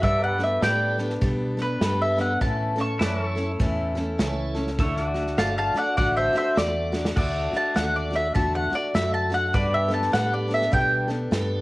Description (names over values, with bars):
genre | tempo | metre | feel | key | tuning
honky-tonk and classic country | 101 BPM | 4/4 | swing 60% on 8ths | D major | A4 = 439 Hz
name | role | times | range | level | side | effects
mandolin | melody | 0.0-11.1 s | B4 to C#6 | -24 LUFS | equal | cassette tape, plate reverb
picked steel-string acoustic guitar | accompaniment | 0.0-11.6 s | A2 to A4 | -29 LUFS | left 1 dB | plate reverb
pedal steel guitar | sustained chords | 0.0-11.6 s | E4 to D5 | -35 LUFS | equal | plate reverb
vintage muted fingered electric bass | bass | 0.0-11.6 s | G1 to B2 | -28 LUFS | equal | none
natural country drum kit | drums | 0.0-11.5 s | crash cymbal, hi-hat, kick drum, snare drum | -28 LUFS | equal | cassette tape
tonewheel organ | accompaniment | 0.6-11.6 s | E4 to E5 | -34 LUFS | right 2 dB | slow rotary speaker, overdrive, plate reverb
room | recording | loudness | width
moderate studio reverb, RT60 0.6 s | home recording on cassette | -21 LUFS | side -20 dB against mid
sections
0.0-7.2 A section; 7.2-11.6 A section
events
mandolin solo 0.0-11.6; drum fill 6.9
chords
0.0 Gadd9; 2.4 A; 4.8 D; 9.5 Gadd9